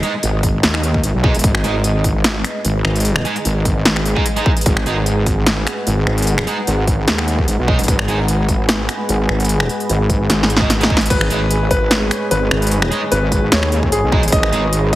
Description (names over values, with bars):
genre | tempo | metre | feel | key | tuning
heavy wobble dubstep | 149 BPM | 4/4 | swing 54% on 16ths, half-time | G# minor | A4 = 440 Hz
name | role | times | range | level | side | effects
supersaw pad | sustained chords | 0.0-15.0 s | G#3 to F#5 | -24 LUFS | equal | sidechain pumping, low-pass filter
fuzz guitar | stabs | 0.0-8.2, 10.6-14.6 s | G#3 to G#4 | -24 LUFS | right 3 dB | distortion, dub echo
big-room dance drum kit | drums | 0.0-15.0 s | crash cymbal, finger snaps, hi-hat, snare drum | -19 LUFS | equal | none
wobble bass | bass | 0.2-15.0 s | D#1 to D#2 | -18 LUFS | equal | chorus, overdrive
electronic kick drum | drums | 0.4-15.0 s | none | -18 LUFS | equal | none
clear grand piano | melody | 11.1-15.0 s | G#4 to D#5 | -20 LUFS | left 1 dB | dub echo
room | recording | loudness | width
light reverb | heavily compressed radio sound, multiband compression | -14 LUFS | side -16 dB against mid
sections
0.0-15.0 A section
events
drum fill 10.3-11.1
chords
0.0 G#m